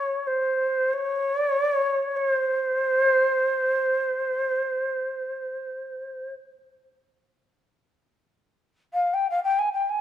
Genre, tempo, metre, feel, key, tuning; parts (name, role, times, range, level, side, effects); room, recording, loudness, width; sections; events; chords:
japanese traditional, Japanese chamber music; free time; C miyako bushi; A4 = 440 Hz
breathy shakuhachi; solo; 0.0-10.0 s; C5 to Ab5; -22 LUFS; equal
moderate recital hall reverb, RT60 1.7 s; -22 LUFS; side -10 dB against mid
0.0-10.0 A section